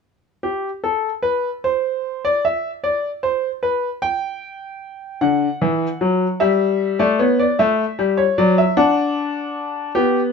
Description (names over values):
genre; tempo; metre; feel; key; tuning
classical, baroque-style two-part invention for grand piano; 50 BPM (dotted quarters); 6/8; straight; unclear; A4 = 438 Hz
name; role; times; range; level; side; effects
clear grand piano; solo; 0.4-10.3 s; D3 to G5; -17 LUFS; left 1 dB; none
room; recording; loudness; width
light reverb; minimal, uncompressed stereo recording; -17 LUFS; side -5 dB against mid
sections
0.4-10.3 A section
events
none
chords
0.4 N.C.; 5.2 D; 6.4 Em7/G; 7.6 A7; 8.8 D